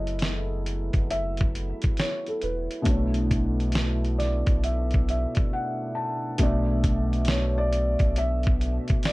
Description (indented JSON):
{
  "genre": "lo-fi hip hop",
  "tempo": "68 BPM",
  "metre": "4/4",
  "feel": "swing 65% on 16ths",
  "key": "B minor",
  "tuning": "A4 = 441 Hz",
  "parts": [
    { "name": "felt-muted upright piano", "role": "melody", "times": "0.0-9.1 s", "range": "A4 to E5", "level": "-32 LUFS", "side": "equal", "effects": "low-pass filter, analog delay" },
    { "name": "felt-muted upright piano", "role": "accompaniment", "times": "0.0-9.1 s", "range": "B2 to A5", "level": "-29 LUFS", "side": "equal", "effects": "low-pass filter" },
    { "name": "mellow French horn section", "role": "sustained chords", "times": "0.0-9.1 s", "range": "A2 to E5", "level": "-38 LUFS", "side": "right 2 dB", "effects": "low-pass filter" },
    { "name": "soft dub sub bass", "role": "bass", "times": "0.0-8.8 s", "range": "E1 to B1", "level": "-27 LUFS", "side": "equal", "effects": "none" },
    { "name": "dusty soul sampler-style drum kit", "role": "drums", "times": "0.1-9.1 s", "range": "hi-hat, kick drum, snare drum", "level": "-25 LUFS", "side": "equal", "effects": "none" }
  ],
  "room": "little or no reverb",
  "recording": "none",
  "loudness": "-23 LUFS",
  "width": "side -20 dB against mid",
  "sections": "0.0-6.4 A section; 6.4-9.1 B section",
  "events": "break 5.5-6.4",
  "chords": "0.0 F#m11; 2.9 Bm11",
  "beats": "0.22 1.10 1.98 | 2.86 3.75 4.63 5.51 | 6.39 7.28 8.16 9.04"
}